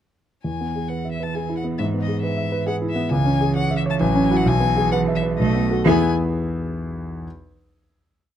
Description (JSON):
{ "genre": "quick classical-period movement for piano trio", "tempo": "133 BPM", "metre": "3/4", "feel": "straight", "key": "E major", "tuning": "A4 = 440 Hz", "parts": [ { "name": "rich violin", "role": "melody", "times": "0.4-6.1 s", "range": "D#5 to A5", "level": "-27 LUFS", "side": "left 8 dB", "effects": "none" }, { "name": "warm concert grand piano", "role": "accompaniment", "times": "0.4-7.3 s", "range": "A1 to E5", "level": "-20 LUFS", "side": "equal", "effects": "none" }, { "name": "clear cello", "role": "second line", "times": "0.5-6.1 s", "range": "E3 to B3", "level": "-26 LUFS", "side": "right 8 dB", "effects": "none" } ], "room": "light reverb", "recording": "dark, warm production", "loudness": "-19 LUFS", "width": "side -10 dB against mid", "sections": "0.4-5.9 A section; 5.9-7.2 final chord", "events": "none", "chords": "0.4 E; 1.8 E/G#; 3.1 C#m; 4.0 A6; 4.5 E/B; 5.4 B7; 5.9 E" }